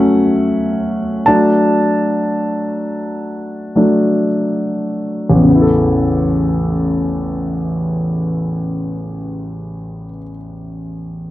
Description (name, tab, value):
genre	pop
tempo	free time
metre	none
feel	none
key	A major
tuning	A4 = 441 Hz
part	warm grand piano	accompaniment	0.0-11.3 s	A1 to A5	-14 LUFS	equal	none
room	studio reverb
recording	dry, close 1970s-style studio recording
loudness	-14 LUFS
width	side -15 dB against mid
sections	0.0-5.5 A section; 5.5-10.2 B section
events	slowing down 0.0-5.5; grand piano solo 0.0-5.5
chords	0.0 F#m; 1.3 D; 5.5 Aadd9